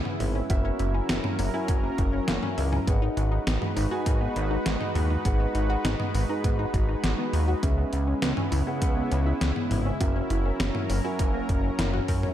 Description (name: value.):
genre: synthwave.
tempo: 101 BPM.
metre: 4/4.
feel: straight.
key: C# dorian.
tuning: A4 = 439 Hz.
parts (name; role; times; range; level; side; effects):
lush unison pad; sustained chords; 0.0-12.3 s; C#3 to B4; -32 LUFS; equal; chorus, sidechain pumping.
analog pluck; arpeggios; 0.0-12.3 s; A#3 to C#5; -33 LUFS; left 3 dB; chorus, phaser, digital delay.
dark baby grand piano; stabs; 0.0-12.3 s; C#4 to A#5; -34 LUFS; right 3 dB; digital delay.
gated 80s digital drum machine; drums; 0.1-12.3 s; hi-hat, snare drum, toms; -30 LUFS; equal; gated reverb, gated reverb snare, overdrive.
chorused synth bass; bass; 0.2-12.3 s; F#1 to F#2; -26 LUFS; equal; tube saturation.
electronic kick drum; drums; 0.5-12.2 s; none; -26 LUFS; equal; none.
room: light reverb.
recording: dark, warm production.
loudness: -23 LUFS.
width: side -11 dB against mid.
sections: 0.0-12.3 A section.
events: none.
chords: 0.0 C#m7; 0.5 F#7; 2.9 G#m7; 7.6 C#m7; 10.0 F#7.